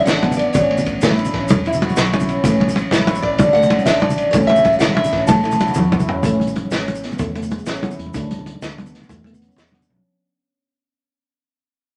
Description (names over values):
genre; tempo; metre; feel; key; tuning
highlife guitar band; 126 BPM (dotted quarters); 12/8; straight; A major; A4 = 440 Hz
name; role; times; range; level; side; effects
fingerpicked steel-string acoustic guitar; melody; 0.0-5.9 s; C#5 to A5; -19 LUFS; equal; none
handpan; arpeggios; 0.0-10.0 s; G#3 to F#4; -26 LUFS; equal; none
congas; percussion; 0.0-10.0 s; none; -22 LUFS; equal; none
fingered electric bass; bass; 0.1-10.0 s; E1 to E2; -30 LUFS; equal; none
crunchy breakbeat drum kit; drums; 0.1-10.0 s; hi-hat, kick drum, ride cymbal, snare drum, toms; -25 LUFS; equal; none
maracas; percussion; 0.1-9.9 s; none; -38 LUFS; equal; none
clean electric guitar; accompaniment; 0.2-9.9 s; C#3 to E4; -26 LUFS; equal; none
room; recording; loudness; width
wet studio ambience, RT60 0.4 s; none; -17 LUFS; mono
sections
0.0-6.2 A section; 6.2-10.1 B section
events
drum fill 5.8-6.2, 9.9; fade-out 6.2-10.1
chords
0.0 D; 0.5 A; 1.5 E5; 2.4 A; 3.4 D; 4.3 A; 5.3 Aadd9; 6.2 Amaj7; 8.1 D5; 9.1 Esus4